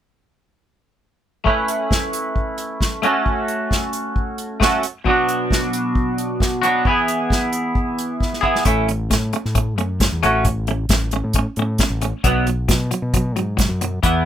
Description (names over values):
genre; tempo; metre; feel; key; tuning
indie rock; 134 BPM; 4/4; straight; A major; A4 = 439 Hz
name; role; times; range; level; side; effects
twangy electric guitar; riff; 1.4-14.2 s; B2 to B4; -20 LUFS; right 1 dB; double-tracked left and right
unplugged drum kit; drums; 1.5-14.1 s; hi-hat, kick drum, snare drum; -20 LUFS; equal; none
growling fingered electric bass; bass; 8.7-14.3 s; A1 to B2; -22 LUFS; equal; overdrive
room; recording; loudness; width
little or no reverb; rough home demo mix; -17 LUFS; side -10 dB against mid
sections
1.5-8.7 A section; 8.7-14.3 B section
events
drum fill 8.2-8.7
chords
1.5 Aadd9; 3.0 F#m/A; 5.1 Bm; 6.9 E; 8.7 A; 10.2 F#m/A (rootless); 12.2 B5